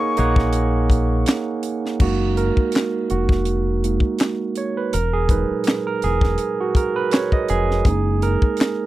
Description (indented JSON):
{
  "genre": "R&B, neo-soul",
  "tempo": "82 BPM",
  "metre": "4/4",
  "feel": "swing 54% on 16ths",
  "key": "F# major",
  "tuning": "A4 = 440 Hz",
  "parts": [
    { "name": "mellow concert flute", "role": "melody", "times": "0.0-1.2 s", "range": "C#6", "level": "-27 LUFS", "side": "left 6 dB", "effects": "tape echo" },
    { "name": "barky tine electric piano", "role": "accompaniment", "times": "0.0-8.9 s", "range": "A#2 to G#5", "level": "-21 LUFS", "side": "right 4 dB", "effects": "none" },
    { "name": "deep dub fingered electric bass", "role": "bass", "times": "0.2-8.5 s", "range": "E1 to A#1", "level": "-21 LUFS", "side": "left 1 dB", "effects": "none" },
    { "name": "tight funk drum kit", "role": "drums", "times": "0.2-8.8 s", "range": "crash cymbal, handclaps, hi-hat, kick drum, snare drum", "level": "-19 LUFS", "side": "left 1 dB", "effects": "none" }
  ],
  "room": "little or no reverb",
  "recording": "dry, close 1970s-style studio recording",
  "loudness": "-17 LUFS",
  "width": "side -15 dB against mid",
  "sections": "0.0-2.0 A section; 2.0-8.9 B section",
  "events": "tine electric piano solo 2.0-8.9",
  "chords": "0.0 C#sus24; 2.0 F#6; 4.9 Emaj9#11; 7.9 F#6"
}